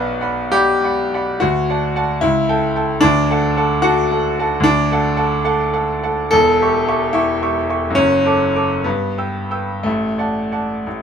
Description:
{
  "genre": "classical, romantic character piece for solo piano",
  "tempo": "57-77 BPM (dotted quarters)",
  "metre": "6/8",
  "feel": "rubato",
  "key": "D major from 4.6 s",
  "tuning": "A4 = 438 Hz",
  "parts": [
    { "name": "bright baby grand piano", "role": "solo", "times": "0.0-11.0 s", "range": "E1 to E6", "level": "-15 LUFS", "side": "equal", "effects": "none" }
  ],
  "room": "light reverb",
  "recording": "minimal, uncompressed stereo recording",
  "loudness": "-15 LUFS",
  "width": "side -7 dB against mid",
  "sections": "0.0-11.0 A section",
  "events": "none",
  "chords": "0.0 Bm; 1.4 D; 2.2 A7/C#; 3.0 D; 6.3 C#dim/E; 8.0 D/F#; 8.8 Em/G; 9.8 D/A",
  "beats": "0.54 | 1.41 2.21 | 3.01 3.83 | 4.63 5.43 | 6.32 7.13 | 7.97 8.85 | 9.85 10.85"
}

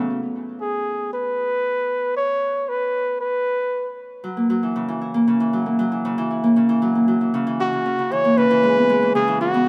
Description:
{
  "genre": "folktronica",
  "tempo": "116 BPM",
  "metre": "4/4",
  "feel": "straight",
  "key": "unclear",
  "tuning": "A4 = 440 Hz",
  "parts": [
    { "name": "Celtic harp", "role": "arpeggios", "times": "0.0-9.7 s", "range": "C#3 to E4", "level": "-22 LUFS", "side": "equal", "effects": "tape echo" },
    { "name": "warm flugelhorn", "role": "melody", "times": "0.6-3.9, 7.6-9.7 s", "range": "F#4 to C#5", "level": "-22 LUFS", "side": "equal", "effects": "plate reverb, tape echo" }
  ],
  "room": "wet small room reverb, RT60 0.5 s",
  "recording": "none",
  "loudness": "-21 LUFS",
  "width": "mono",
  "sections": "0.1-8.4 A section; 8.4-9.7 B section",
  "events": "none",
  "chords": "0.1 N.C.; 4.2 F#7; 8.4 C#m7",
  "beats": "| 0.10 0.62 1.14 1.65 | 2.17 2.69 3.20 3.72 | 4.24 4.76 5.27 5.79 | 6.31 6.83 7.34 7.86 | 8.38 8.89 9.41"
}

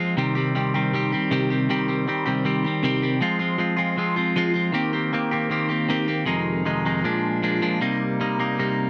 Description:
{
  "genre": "rock",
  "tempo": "157 BPM",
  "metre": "4/4",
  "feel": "straight",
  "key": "F dorian",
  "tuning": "A4 = 440 Hz",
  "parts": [
    { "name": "clean electric guitar", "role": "solo", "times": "0.0-8.9 s", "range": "F2 to G4", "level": "-23 LUFS", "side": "equal", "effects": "phaser" }
  ],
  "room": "light reverb",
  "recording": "dry, close 1970s-style studio recording",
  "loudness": "-23 LUFS",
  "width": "mono",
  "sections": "0.0-6.3 A section; 6.3-8.9 B section",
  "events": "none",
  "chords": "0.1 Cm; 3.2 Fm; 4.7 Eb6; 6.3 Fm7; 7.0 Bb7; 7.8 Cm7",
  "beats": "| 0.15 0.53 0.92 1.30 | 1.68 2.06 2.44 2.83 | 3.21 3.59 3.97 4.36 | 4.74 5.12 5.50 5.89 | 6.27 6.66 7.04 7.43 | 7.81 8.20 8.58"
}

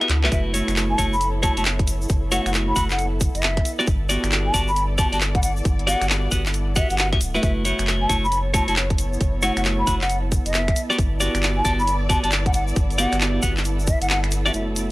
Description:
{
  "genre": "UK garage, two-step garage",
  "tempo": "135 BPM",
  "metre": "4/4",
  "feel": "swing 64% on 16ths",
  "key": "unclear",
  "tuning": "A4 = 436 Hz",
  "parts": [
    { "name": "clean electric guitar", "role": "stabs", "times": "0.0-14.9 s", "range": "A3 to F#5", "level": "-24 LUFS", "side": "equal", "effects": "low-pass filter" },
    { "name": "garage drum kit", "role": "drums", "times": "0.0-14.9 s", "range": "finger snaps, handclaps, hi-hat", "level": "-24 LUFS", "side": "equal", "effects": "none" },
    { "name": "dark symphonic string section", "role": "texture", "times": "0.0-14.9 s", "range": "B3 to D5", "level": "-32 LUFS", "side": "equal", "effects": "sidechain pumping" },
    { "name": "saturated sub bass", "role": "bass", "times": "0.1-14.9 s", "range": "D1 to D2", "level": "-24 LUFS", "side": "equal", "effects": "none" },
    { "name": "mellow hollow silver concert flute", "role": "melody", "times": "0.2-14.6 s", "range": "E5 to B5", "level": "-26 LUFS", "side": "equal", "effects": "analog delay" },
    { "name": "electronic kick drum", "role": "drums", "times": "0.3-14.0 s", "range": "none", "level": "-22 LUFS", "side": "equal", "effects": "none" },
    { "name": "egg shaker", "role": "percussion", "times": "0.3-14.9 s", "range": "none", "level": "-34 LUFS", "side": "left 1 dB", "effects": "none" }
  ],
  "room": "little or no reverb",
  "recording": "dry, gritty hardware recording",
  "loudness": "-18 LUFS",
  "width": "side -19 dB against mid",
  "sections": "0.0-14.5 A section",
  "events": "break 0.0-0.3; fade-in on string section 0.0-14.5; drum fill 0.1; kick drops out 14.1-14.5; band accent 14.1",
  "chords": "0.3 F#m7; 3.7 Gmaj7; 7.4 F#m7; 10.8 Gmaj7",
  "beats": "| 0.32 0.76 1.21 1.65 | 2.10 2.54 2.99 3.43 | 3.88 4.32 4.76 5.21 | 5.65 6.10 6.54 6.99 | 7.43 7.88 8.32 8.76 | 9.21 9.65 10.10 10.54 | 10.99 11.43 11.88 12.32 | 12.76 13.21 13.65 14.10 | 14.54"
}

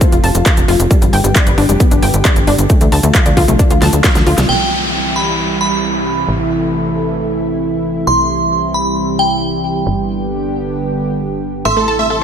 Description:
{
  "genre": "uplifting trance",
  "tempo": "134 BPM",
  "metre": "4/4",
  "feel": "straight",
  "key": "unclear",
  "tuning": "A4 = 440 Hz",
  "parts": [
    { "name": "lush unison pad", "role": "sustained chords", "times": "0.0-12.2 s", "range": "C3 to G4", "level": "-18 LUFS", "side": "right 1 dB", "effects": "chorus, sidechain pumping" },
    { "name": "analog pluck", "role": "arpeggios", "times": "0.0-4.3, 11.7-12.2 s", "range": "G3 to A5", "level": "-18 LUFS", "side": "left 3 dB", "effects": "chorus, sidechain pumping, ping-pong delay" },
    { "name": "big-room dance drum kit", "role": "drums", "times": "0.0-4.5 s", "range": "handclaps, hi-hat, shaker, snare drum", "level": "-18 LUFS", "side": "equal", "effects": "overdrive, low-pass filter on hats, low-pass filter on snare, low-pass filter on perc" },
    { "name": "electronic kick drum", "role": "drums", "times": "0.0-4.1 s", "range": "none", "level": "-12 LUFS", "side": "equal", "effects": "overdrive" },
    { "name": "tight sequencer bass", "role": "bass", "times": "0.1-12.2 s", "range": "F1 to D2", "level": "-18 LUFS", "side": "equal", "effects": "sidechain pumping" },
    { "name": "glassy synth bell", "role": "second line", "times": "4.5-12.2 s", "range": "G5 to C6", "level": "-18 LUFS", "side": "right 1 dB", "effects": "chorus, phaser, tape echo" },
    { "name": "downlifter", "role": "sound effects", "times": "4.5-8.1 s", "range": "none", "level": "-22 LUFS", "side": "equal", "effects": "none" },
    { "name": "big supersaw lead", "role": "melody", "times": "11.7-12.2 s", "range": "A4 to E5", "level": "-15 LUFS", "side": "right 2 dB", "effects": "phaser, sidechain pumping" }
  ],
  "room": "light reverb, digital ambience",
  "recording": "none",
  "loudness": "-11 LUFS",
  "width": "side -8 dB against mid",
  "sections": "0.0-4.5 A section; 4.5-12.2 B section",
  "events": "drum fill 3.8-4.5; band accent 4.4",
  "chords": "0.0 F; 0.9 G; 2.7 Dm; 4.5 C; 6.3 Am; 8.1 C; 9.9 G; 11.7 Am",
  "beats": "0.01 0.46 | 0.91 1.35 1.80 2.25 | 2.70 3.15 3.59 4.04 | 4.49 4.94 5.38 5.83 | 6.28 6.73 7.18 7.62 | 8.07 8.52 8.97 9.41 | 9.86 10.31 10.76 11.21 | 11.65 12.10"
}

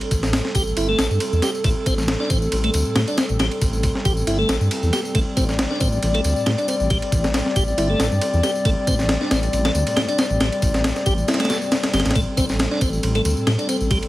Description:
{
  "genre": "breakbeat, breaks",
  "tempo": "137 BPM",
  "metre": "4/4",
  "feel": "swing 54% on 16ths",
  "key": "A minor",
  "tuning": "A4 = 440 Hz",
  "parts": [
    { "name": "dark analog pad", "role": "sustained chords", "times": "0.0-14.1 s", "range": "G3 to D5", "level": "-25 LUFS", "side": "left 1 dB", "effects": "chorus, sidechain pumping" },
    { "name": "breakbeat sampler-style drum kit", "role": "drums", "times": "0.0-14.1 s", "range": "kick drum, ride cymbal, snare drum", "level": "-22 LUFS", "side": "equal", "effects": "small room ambience" },
    { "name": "dark detuned saw bass", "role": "bass", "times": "0.1-14.0 s", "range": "G1 to A2", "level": "-22 LUFS", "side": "equal", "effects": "none" },
    { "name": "tambourine", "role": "drums", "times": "0.1-14.0 s", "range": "none", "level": "-34 LUFS", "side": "left 3 dB", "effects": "overdrive, small room ambience" },
    { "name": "tonewheel organ", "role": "riff", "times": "0.6-14.0 s", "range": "G3 to A4", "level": "-26 LUFS", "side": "equal", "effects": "slow rotary speaker, overdrive, ping-pong delay" }
  ],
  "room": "moderate plate reverb, RT60 2.2 s",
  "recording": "heavily compressed radio sound, multiband compression, vinyl crackle",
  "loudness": "-18 LUFS",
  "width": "side -16 dB against mid",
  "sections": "0.0-14.1 A section",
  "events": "none",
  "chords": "0.0 Am7",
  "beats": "0.33 0.77 1.21 | 1.65 2.08 2.52 2.96 | 3.40 3.84 4.27 4.71 | 5.15 5.59 6.03 6.46 | 6.90 7.34 7.78 8.21 | 8.65 9.09 9.53 9.97 | 10.40 10.84 11.28 11.72 | 12.16 12.60 13.03 13.47 | 13.91"
}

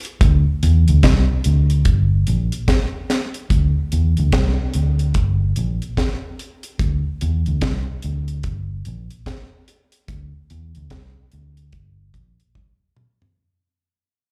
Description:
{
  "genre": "roots reggae",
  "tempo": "73 BPM",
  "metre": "4/4",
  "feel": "swing 62% on 16ths",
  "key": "unclear",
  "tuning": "A4 = 435 Hz",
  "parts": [
    { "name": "deep reggae drum kit", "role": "drums", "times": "0.0-13.4 s", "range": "hi-hat, kick drum, snare drum, toms", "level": "-22 LUFS", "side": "equal", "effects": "none" },
    { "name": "vintage muted fingered electric bass", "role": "bass", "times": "0.2-12.4 s", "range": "G1 to E2", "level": "-19 LUFS", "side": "equal", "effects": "none" }
  ],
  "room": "little or no reverb",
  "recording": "live gig heard through the venue's PA, club reverb",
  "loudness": "-19 LUFS",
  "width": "mono",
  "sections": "0.0-13.4 A section",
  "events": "fade-out 0.0-13.4; drum fill 12.5-13.4",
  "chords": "none",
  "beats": "| 0.21 1.03 1.86 2.68 | 3.50 4.33 5.15 5.97 | 6.79 7.62 8.44 9.26 | 10.08 10.90 11.73 12.55"
}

